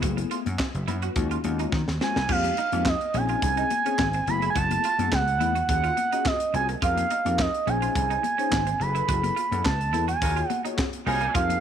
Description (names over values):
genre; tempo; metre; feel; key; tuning
early-eighties boogie funk; 106 BPM; 4/4; straight; unclear; A4 = 440 Hz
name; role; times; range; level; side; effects
mellow synth brass; accompaniment; 0.0-11.6 s; Ab3 to Ab5; -32 LUFS; left 13 dB; chorus
electric guitar at the edge of break-up; riff; 0.0-11.5 s; Bb3 to Gb4; -35 LUFS; right 14 dB; tube saturation, analog chorus
vintage slap bass; bass; 0.0-11.6 s; Gb1 to Eb3; -28 LUFS; equal; none
tight funk drum kit; drums; 0.0-11.6 s; crash cymbal, handclaps, hi-hat, kick drum, snare drum; -29 LUFS; equal; none
congas; percussion; 0.0-11.6 s; none; -36 LUFS; left 12 dB; none
expressive synth lead; melody; 2.0-11.6 s; Eb5 to Cb6; -25 LUFS; right 4 dB; chorus, slapback echo
clear horn section; second line; 10.2-11.4 s; Gb3 to Bb4; -33 LUFS; right 1 dB; none
room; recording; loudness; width
light reverb, small room ambience; 1960s-style stereo with parts hard left and right; -22 LUFS; side -8 dB against mid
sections
0.0-2.3 A section; 2.3-11.6 B section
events
drum fill 1.7-2.3; band accent 9.1-11.3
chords
0.0 Gbm11; 1.2 Ebm11; 2.3 Fm11; 3.1 Bbm11; 4.3 Gbm11; 5.7 Ebm11; 6.8 Fm11; 7.7 Bbm11; 8.8 Gbm11; 10.2 Ebm11